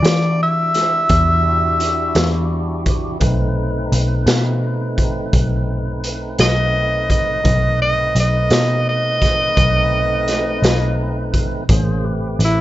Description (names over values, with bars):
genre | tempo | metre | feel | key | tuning
slow blues | 57 BPM (dotted quarters) | 12/8 | straight | unclear | A4 = 441 Hz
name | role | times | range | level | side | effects
warm tenor saxophone | melody | 0.0-12.6 s | E4 to E5 | -17 LUFS | equal | none
tonewheel organ | sustained chords | 0.0-12.6 s | A3 to C5 | -25 LUFS | equal | slow rotary speaker
vintage muted picked electric bass | bass | 0.0-12.6 s | A1 to E3 | -19 LUFS | equal | none
raw garage drum kit | drums | 0.0-12.6 s | hi-hat, kick drum, snare drum | -20 LUFS | equal | none
room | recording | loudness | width
light reverb | nothing above 7.8 kHz | -15 LUFS | side -15 dB against mid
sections
0.0-12.6 A section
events
none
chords
0.0 Em9; 3.2 B7b9; 11.7 Am9